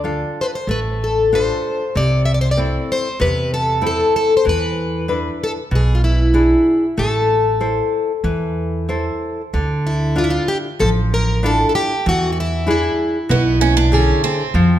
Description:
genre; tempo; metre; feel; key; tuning
fado-style ballad; 95 BPM; 4/4; rubato; A minor, D minor from 9.5 s; A4 = 440 Hz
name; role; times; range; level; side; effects
nylon-string guitar; accompaniment; 0.0-14.8 s; B2 to C5; -21 LUFS; left 1 dB; none
upright bass; bass; 0.0-14.8 s; A1 to F2; -20 LUFS; right 1 dB; none
picked plugged-in twelve-string acoustic guitar; melody; 0.4-14.2 s; E4 to E5; -18 LUFS; left 2 dB; none
picked twelve-string acoustic guitar; second line; 13.3-14.7 s; B3 to D4; -20 LUFS; right 7 dB; none
room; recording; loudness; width
moderate recital hall reverb, RT60 1.6 s; none; -15 LUFS; side -12 dB against mid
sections
0.0-9.5 A section; 9.5-14.8 B section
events
none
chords
0.0 Dm; 1.9 Am/C; 4.4 E7; 7.0 Am; 9.5 Dmadd9; 12.1 E7

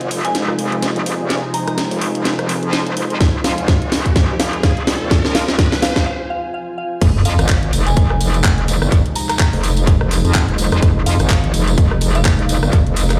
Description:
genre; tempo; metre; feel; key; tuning
bass house; 126 BPM; 4/4; swing 57% on 16ths; F minor; A4 = 438 Hz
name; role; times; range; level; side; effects
sweeping resonant pad; sustained chords; 0.0-13.2 s; C3 to Eb4; -27 LUFS; equal; chorus, sidechain pumping
metallic wobble bass; bass; 0.0-13.2 s; F1 to F2; -21 LUFS; equal; chorus, sidechain pumping, high-pass filter
garage drum kit; drums; 0.0-13.2 s; crash cymbal, handclaps, hi-hat, rim click, snare drum; -24 LUFS; equal; studio ambience
riser and sub drop; sound effects; 2.2-8.9 s; none; -28 LUFS; equal; none
granular cloud pad; texture; 0.0-6.1 s; F4 to Ab5; -32 LUFS; equal; none
soft synth bell; melody; 0.2-12.5 s; F5 to Bb5; -29 LUFS; equal; chorus, tape echo
electronic kick drum; drums; 3.2-12.8 s; none; -16 LUFS; equal; studio ambience
tambourine; percussion; 7.0-13.2 s; none; -31 LUFS; equal; none
room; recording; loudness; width
light reverb, digital ambience; played on a big sound system in a bare room, large studio reverb; -16 LUFS; mono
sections
0.0-7.0 A section; 7.0-13.2 B section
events
build-up 0.0-7.0; drum fill 0.0-6.1; riser 2.2-6.1; break 6.1-7.0; drop 7.0-13.2; impact 7.0-8.9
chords
0.0 Fm7

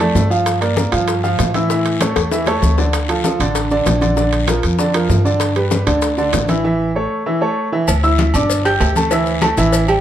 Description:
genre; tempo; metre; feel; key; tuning
latin, salsa; 194 BPM; 4/4; straight; unclear; A4 = 440 Hz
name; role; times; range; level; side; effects
clear baby grand piano; accompaniment; 0.0-10.0 s; D3 to G6; -16 LUFS; right 2 dB; none
upright bass; bass; 0.0-10.0 s; G1 to A2; -19 LUFS; equal; none
maracas; percussion; 0.0-10.0 s; none; -29 LUFS; left 6 dB; none
timbales and agogo bells; percussion; 0.0-10.0 s; none; -25 LUFS; right 6 dB; none
congas; percussion; 0.1-10.0 s; none; -24 LUFS; left 3 dB; none
bongos and cowbell; percussion; 0.2-9.9 s; none; -25 LUFS; left 8 dB; none
guiro; percussion; 0.2-10.0 s; none; -31 LUFS; left 7 dB; none
room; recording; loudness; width
moderate large studio reverb, RT60 0.8 s; dark, warm production; -14 LUFS; side -11 dB against mid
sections
0.0-7.9 A section; 7.9-10.0 B section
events
drum fill 2.2-2.9; break 6.6-7.9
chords
0.5 Gm7; 1.7 A; 2.9 Dm; 4.2 Bb; 5.4 G; 6.6 A; 7.9 Dsus2; 8.5 G5; 9.1 Dsus2

